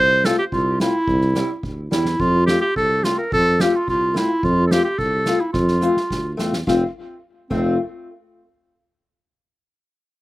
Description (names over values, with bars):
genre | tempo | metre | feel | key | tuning
alpine folk, alpine dance band | 108 BPM | 2/4 | straight | F major | A4 = 439 Hz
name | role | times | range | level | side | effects
warm clarinet | melody | 0.0-7.8 s | C4 to C5 | -19 LUFS | right 1 dB | none
dark tuba | bass | 0.0-7.8 s | F1 to F2 | -22 LUFS | equal | none
fingerpicked old ladder-braced acoustic guitar | accompaniment | 0.2-7.8 s | G3 to F4 | -23 LUFS | left 3 dB | slapback echo
soft-mallet drum kit | drums | 0.2-7.6 s | crash cymbal, hi-hat, kick drum, snare drum | -26 LUFS | right 1 dB | none
room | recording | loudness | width
little or no reverb | recorded outdoors, with no room sound | -17 LUFS | side -18 dB against mid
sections
0.0-6.7 A section; 6.7-7.8 B section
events
drum fill 5.5-6.7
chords
0.0 F/C; 1.1 C; 2.2 F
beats
0.52 | 1.07 1.63 | 2.20 2.76 | 3.32 3.88 | 4.43 4.99 | 5.54 6.10 | 6.67 7.23